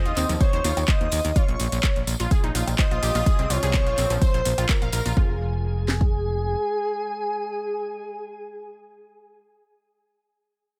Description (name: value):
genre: progressive house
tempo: 126 BPM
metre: 4/4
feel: straight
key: F minor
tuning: A4 = 440 Hz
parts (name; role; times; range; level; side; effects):
- expressive synth lead; melody; 0.0-9.4 s; Ab4 to Eb5; -31 LUFS; equal; subtle chorus, sidechain pumping, tape echo
- airy dreamy lead; second line; 0.0-9.4 s; Ab4 to Eb5; -37 LUFS; equal; chorus, sidechain pumping, tape echo
- unison pluck; arpeggios; 0.0-5.4 s; F3 to F5; -34 LUFS; equal; sidechain pumping, tape echo
- plucky analog bass; bass; 0.0-6.6 s; F1 to Eb2; -28 LUFS; equal; sidechain pumping
- house drum kit; drums; 0.1-5.1 s; handclaps, hi-hat; -33 LUFS; equal; none
- tambourine; percussion; 0.2-5.1 s; none; -38 LUFS; equal; none
- house drum kit; drums; 0.4-6.1 s; kick drum, snare drum; -24 LUFS; equal; none
- congas and cowbell; percussion; 0.6-5.1 s; none; -38 LUFS; equal; overdrive, sidechain pumping on perc
room: digital ambience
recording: none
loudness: -23 LUFS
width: mono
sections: 0.0-5.2 A section; 5.2-9.0 B section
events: drop 0.0-5.2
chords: 0.0 Ebsus2; 1.4 Bbm7; 5.2 Fm